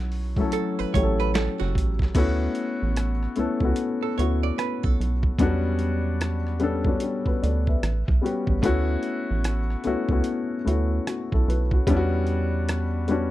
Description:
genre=R&B, neo-soul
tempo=74 BPM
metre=4/4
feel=swing 63% on 16ths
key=unclear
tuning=A4 = 439 Hz
part: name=dark upright piano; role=accompaniment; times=0.0-13.3 s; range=F#3 to E5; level=-26 LUFS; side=left 3 dB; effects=none
part: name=rubbery square bass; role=bass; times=0.0-13.3 s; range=F#1 to E2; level=-25 LUFS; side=right 1 dB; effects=none
part: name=boom bap sampler-style drum kit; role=drums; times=0.1-13.3 s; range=crash cymbal, hi-hat, kick drum, rim click, snare drum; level=-25 LUFS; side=right 1 dB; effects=none
part: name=archtop guitar, miked and amplified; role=second line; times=0.5-5.4 s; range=F#4 to D5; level=-30 LUFS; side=right 16 dB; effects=none
room=little or no reverb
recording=dry, close 1970s-style studio recording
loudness=-22 LUFS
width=side -15 dB against mid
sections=0.0-2.1 A section; 2.1-13.3 B section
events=none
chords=0.0 B9sus4; 2.1 D6; 5.4 Em7; 7.8 A13; 8.6 D6; 11.9 Em7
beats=0.52 1.33 | 2.14 2.96 3.77 4.58 | 5.39 6.20 7.01 7.82 | 8.63 9.44 10.25 11.06 | 11.87 12.69

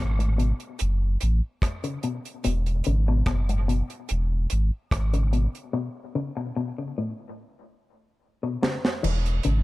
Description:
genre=dub reggae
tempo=73 BPM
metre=4/4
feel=straight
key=unclear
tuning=A4 = 440 Hz
part: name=electric guitar with an envelope filter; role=arpeggios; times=0.0-9.6 s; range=G#2 to E3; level=-30 LUFS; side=left 4 dB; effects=harmonic tremolo, dub echo
part: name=warm sub bass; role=bass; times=0.0-9.6 s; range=E1 to A1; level=-22 LUFS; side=equal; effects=none
part: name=deep reggae drum kit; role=drums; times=0.2-9.6 s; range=crash cymbal, hi-hat, kick drum, rim click, snare drum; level=-28 LUFS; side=right 1 dB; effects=none
room=small room ambience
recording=none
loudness=-24 LUFS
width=side -19 dB against mid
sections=0.0-9.0 A section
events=break 5.7-9.0; drum fill 7.4-9.0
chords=0.0 F#m; 2.4 E; 5.7 Aadd9 (rootless); 9.0 E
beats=0.80 1.62 | 2.45 3.27 4.10 4.92 | 5.74 6.57 7.39 8.21 | 9.04

